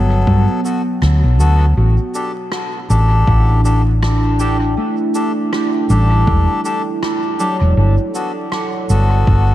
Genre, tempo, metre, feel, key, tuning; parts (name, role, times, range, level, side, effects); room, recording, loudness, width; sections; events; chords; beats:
ambient dub; 80 BPM; 4/4; swing 58% on 16ths; A4 = 440 Hz
deep dark ambient pad; sustained chords; 0.0-9.5 s; B3 to D5; -22 LUFS; right 3 dB; chorus, built-in reverb
Celtic harp; arpeggios; 0.0-9.5 s; F#3 to A5; -25 LUFS; equal; dub echo
melodica; stabs; 0.0-9.5 s; F#3 to A4; -21 LUFS; left 3 dB; dub echo
hollow-body short-scale fingered electric bass; bass; 0.0-9.5 s; E1 to G2; -12 LUFS; equal
electronic kick drum; drums; 0.3-9.4 s; -18 LUFS; equal; overdrive, small room ambience
cabasa and rim click; drums; 0.7-9.1 s; -28 LUFS; equal; small room ambience, dub echo
light reverb; echo-heavy mix, vinyl crackle; -13 LUFS; side -14 dB against mid
0.0-9.5 A section
0.0 Gmaj9; 1.8 A7sus4; 7.8 Gmaj9
0.27 1.02 | 1.77 2.52 3.27 4.02 | 4.77 5.52 6.27 7.02 | 7.77 8.52 9.27